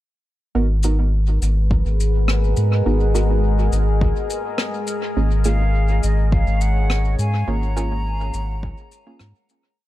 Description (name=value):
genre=ambient dub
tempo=104 BPM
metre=4/4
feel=straight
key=G# dorian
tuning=A4 = 438 Hz
part: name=deep dark ambient pad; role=sustained chords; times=1.6-9.8 s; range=G#3 to F#5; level=-26 LUFS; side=left 2 dB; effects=chorus, built-in reverb
part: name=warm sub bass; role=bass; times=0.5-9.3 s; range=G#1 to G#2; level=-18 LUFS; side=equal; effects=none
part: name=filtered dub chord stab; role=stabs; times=0.6-9.2 s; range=A#3 to A#4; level=-28 LUFS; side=right 4 dB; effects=chorus, dub echo
part: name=shaker and rim click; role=drums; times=0.8-9.6 s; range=none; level=-29 LUFS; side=left 2 dB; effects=dub echo
part: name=electronic kick drum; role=drums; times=1.7-8.7 s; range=none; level=-23 LUFS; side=equal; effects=overdrive
part: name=hollow concert flute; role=melody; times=5.5-9.2 s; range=D#5 to A#5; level=-29 LUFS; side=left 1 dB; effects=dub echo
room=little or no reverb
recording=echo-heavy mix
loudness=-17 LUFS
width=side -15 dB against mid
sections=0.6-9.8 groove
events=fade-out 6.7-9.8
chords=0.6 G#m7; 5.2 F#maj7/G# (rootless)